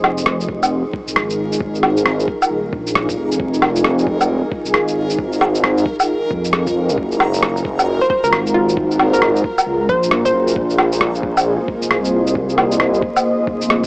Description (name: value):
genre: future garage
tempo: 134 BPM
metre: 4/4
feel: swing 62% on 16ths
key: F phrygian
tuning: A4 = 439 Hz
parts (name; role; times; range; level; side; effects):
- granular cloud pad; sustained chords; 0.0-13.9 s; Bb3 to Eb5; -20 LUFS; equal; built-in reverb, sidechain pumping
- swelling detuned saw bass; bass; 0.0-13.8 s; Eb1 to F2; -19 LUFS; equal; sidechain pumping
- electronic rim click, woodblock and shaker; drums; 0.0-13.9 s; none; -17 LUFS; equal; overdrive
- backwards swelling texture; texture; 0.5-13.9 s; Bb4; -29 LUFS; equal; built-in reverb
- electronic kick drum; drums; 0.5-13.9 s; none; -26 LUFS; equal; overdrive
- hollow square pluck; melody; 8.0-10.6 s; F4 to C5; -19 LUFS; equal; chorus, analog delay
room: light reverb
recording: vinyl crackle, small speaker sound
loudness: -14 LUFS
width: side -28 dB against mid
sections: 0.0-13.9 A section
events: none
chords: 0.0 Fm7; 7.0 Gbmaj9; 10.6 Bb7sus4